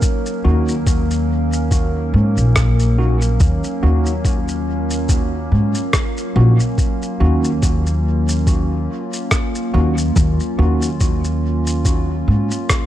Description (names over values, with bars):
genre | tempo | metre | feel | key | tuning
ambient dub | 71 BPM | 4/4 | swing 56% on 16ths | Eb minor | A4 = 439 Hz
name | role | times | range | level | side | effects
warbly tape-like pad | sustained chords | 0.0-12.9 s | Gb3 to Bb4 | -22 LUFS | right 1 dB | chorus, built-in reverb
electronic kick drum | drums | 0.0-12.9 s | none | -18 LUFS | equal | overdrive
electronic shaker and rim click | drums | 0.0-12.9 s | none | -24 LUFS | equal | overdrive, dub echo
tine electric piano | stabs | 0.4-10.9 s | Bb3 to Gb4 | -26 LUFS | equal | overdrive, fast stereo tremolo, vintage 12-bit sampler grit, dub echo
upright bass | bass | 0.4-12.5 s | Bb1 to Ab2 | -16 LUFS | equal | none
room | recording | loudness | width
light reverb | none | -15 LUFS | side -12 dB against mid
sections
0.0-12.9 A section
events
none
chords
0.0 Ebm7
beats
| 0.02 0.87 1.71 2.56 | 3.40 4.25 5.09 5.94 | 6.78 7.63 8.47 9.32 | 10.16 11.01 11.85 12.70